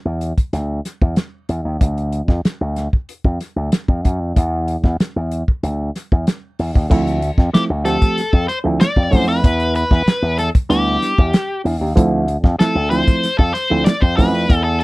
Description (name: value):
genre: funk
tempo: 95 BPM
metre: 4/4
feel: straight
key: D dorian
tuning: A4 = 436 Hz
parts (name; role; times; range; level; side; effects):
- slap bass with an envelope filter; bass; 0.1-14.8 s; D2 to F#2; -19 LUFS; equal; none
- warm soul drum kit; drums; 0.2-14.8 s; crash cymbal, hi-hat, kick drum, snare drum; -14 LUFS; equal; none
- reed electric piano; stabs; 6.9-14.5 s; F3 to G4; -18 LUFS; right 2 dB; none
- nasal lead guitar with a parked wah; melody; 7.5-14.8 s; G4 to D5; -19 LUFS; left 2 dB; overdrive
room: little or no reverb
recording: none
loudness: -15 LUFS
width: side -22 dB against mid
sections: 0.0-6.9 A section; 6.9-14.8 B section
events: none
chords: 0.0 Dsus2; 1.8 Dm; 4.4 N.C.; 6.9 Dm7; 9.4 Em7; 12.0 Dm7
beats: 0.53 1.17 | 1.81 2.45 3.08 3.72 | 4.36 5.00 5.63 6.27 | 6.91 7.54 8.18 8.81 | 9.44 10.07 10.71 11.34 | 11.97 12.60 13.24 13.87 | 14.50